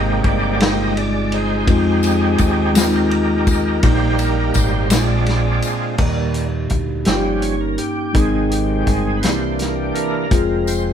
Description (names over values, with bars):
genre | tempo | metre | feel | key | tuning
slow gospel | 56 BPM (dotted quarters) | 6/8 | straight | Eb major | A4 = 440 Hz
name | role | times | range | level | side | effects
mellow tine electric piano | accompaniment | 0.0-10.9 s | G2 to Ab4 | -20 LUFS | left 1 dB | phaser
overdriven tonewheel organ | sustained chords | 0.0-10.9 s | Eb3 to Eb5 | -21 LUFS | right 2 dB | slow rotary speaker, chorus vibrato
fingered electric bass | bass | 0.0-10.9 s | F1 to F2 | -22 LUFS | equal | none
warm soul drum kit | drums | 0.2-10.8 s | crash cymbal, hi-hat, kick drum, ride cymbal, snare drum | -20 LUFS | left 1 dB | none
tambourine | percussion | 2.0-6.0, 10.7-10.9 s | none | -29 LUFS | left 5 dB | none
room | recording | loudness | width
light reverb | band playing live in one room | -15 LUFS | side -8 dB against mid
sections
0.0-6.0 A section; 6.0-10.9 B section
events
tonewheel organ solo 0.0-6.0, 6.0-10.9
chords
0.0 Abmaj7; 1.7 Fm7; 3.8 Eb/Bb; 4.9 Bb7; 6.0 Eb; 7.1 Eb7/G; 8.2 Ab; 9.2 C7; 10.3 Fm